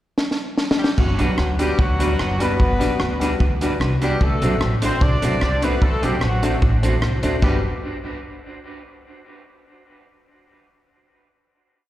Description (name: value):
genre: ska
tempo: 149 BPM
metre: 4/4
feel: straight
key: G major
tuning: A4 = 440 Hz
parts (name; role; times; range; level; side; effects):
- compact cocktail drum kit; drums; 0.2-7.5 s; crash cymbal, hi-hat, kick drum, rim click, snare drum; -21 LUFS; equal; none
- clear horn section; melody; 0.8-7.6 s; F#3 to D5; -25 LUFS; equal; tape echo, slapback echo
- upright bass; bass; 1.0-7.6 s; F#1 to D2; -22 LUFS; equal; none
- electric guitar at the edge of break-up; accompaniment; 1.2-7.6 s; D4 to C5; -26 LUFS; right 2 dB; tape echo, slapback echo
- clear upright piano; stabs; 1.2-7.6 s; G3 to F#4; -27 LUFS; left 5 dB; slapback echo
room: light reverb, small room ambience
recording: live gig heard through the venue's PA, recital hall reverb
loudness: -17 LUFS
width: side -14 dB against mid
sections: 0.0-1.0 pickup bar; 1.0-7.4 head; 7.4-9.0 final chord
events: drum fill 0.2-1.0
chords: 0.0 N.C.; 1.0 Gmaj7; 4.2 D7; 7.4 Gmaj7